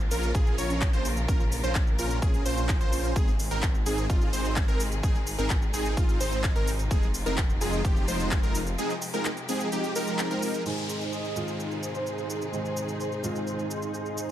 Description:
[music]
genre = EDM, festival progressive house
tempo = 128 BPM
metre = 4/4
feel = straight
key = Ab major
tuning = A4 = 441 Hz
[part]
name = rich studio string section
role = sustained chords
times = 0.0-14.3 s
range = C3 to Bb4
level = -38 LUFS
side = left 1 dB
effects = sidechain pumping
[part]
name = wide detuned saw bass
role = bass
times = 0.0-8.8 s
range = F1 to Bb1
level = -31 LUFS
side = equal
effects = chorus, tube saturation, sidechain pumping
[part]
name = big-room dance drum kit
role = drums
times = 0.0-14.3 s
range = crash cymbal, handclaps, hi-hat, shaker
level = -35 LUFS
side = left 1 dB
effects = none
[part]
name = plucky unison lead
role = arpeggios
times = 0.1-10.6 s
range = F4 to Db5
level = -35 LUFS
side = equal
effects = sidechain pumping, dub echo
[part]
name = supersaw chords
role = riff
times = 0.1-14.3 s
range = F3 to Db5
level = -32 LUFS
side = right 1 dB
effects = analog chorus, sidechain pumping, low-pass filter, dub echo
[part]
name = electronic kick drum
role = drums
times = 0.3-8.4 s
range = none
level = -25 LUFS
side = equal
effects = none
[part]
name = dark baby grand piano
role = accompaniment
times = 10.6-14.3 s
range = Ab2 to Ab4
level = -34 LUFS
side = right 1 dB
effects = sidechain pumping
[part]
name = downlifter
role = sound effects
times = 10.7-14.3 s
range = none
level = -40 LUFS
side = equal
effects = none
[part]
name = breathy flute-like synth lead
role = melody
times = 11.1-13.5 s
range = C5 to Eb5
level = -38 LUFS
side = right 1 dB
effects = analog chorus, vintage 12-bit sampler grit, dub echo
[sound]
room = little or no reverb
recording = none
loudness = -25 LUFS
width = side -12 dB against mid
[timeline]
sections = 0.0-10.7 A section; 10.7-14.3 B section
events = drop 0.0-10.7; break 8.8-10.7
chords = 0.0 Bbm; 3.2 Ab; 6.9 Fm7; 10.7 Ab

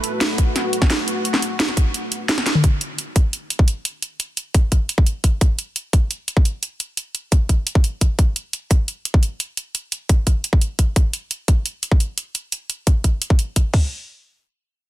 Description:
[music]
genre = dark technical drum and bass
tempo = 173 BPM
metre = 4/4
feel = straight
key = unclear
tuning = A4 = 440 Hz
[part]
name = sweeping resonant pad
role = sustained chords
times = 0.0-2.6 s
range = A3 to B4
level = -26 LUFS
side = left 1 dB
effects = chorus, sidechain pumping
[part]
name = drum and bass drum kit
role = drums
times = 0.0-13.6 s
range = hi-hat, snare drum, toms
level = -21 LUFS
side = equal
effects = overdrive
[part]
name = drum and bass drum kit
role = drums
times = 0.4-13.8 s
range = hi-hat, kick drum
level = -15 LUFS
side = equal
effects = none
[sound]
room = little or no reverb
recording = dense, heavily limited modern master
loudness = -18 LUFS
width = side -15 dB against mid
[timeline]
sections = 0.0-13.7 A section; 13.7-14.9 B section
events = kick drops out 1.9-2.6; drum fill 2.5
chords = 0.0 A5; 2.6 N.C.

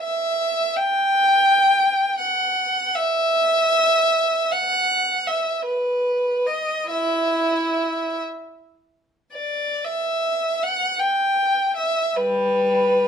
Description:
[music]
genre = classical, free, expressive piece for unaccompanied violin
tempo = 30-56 BPM (dotted quarters)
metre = 6/8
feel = rubato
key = E minor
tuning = A4 = 440 Hz
[part]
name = rich violin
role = solo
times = 0.0-13.1 s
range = G3 to G5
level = -18 LUFS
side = equal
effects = none
[sound]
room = moderate studio reverb, RT60 1.0 s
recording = none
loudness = -18 LUFS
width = side -7 dB against mid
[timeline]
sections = 0.0-9.9 A section; 9.9-13.1 B section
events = none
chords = none

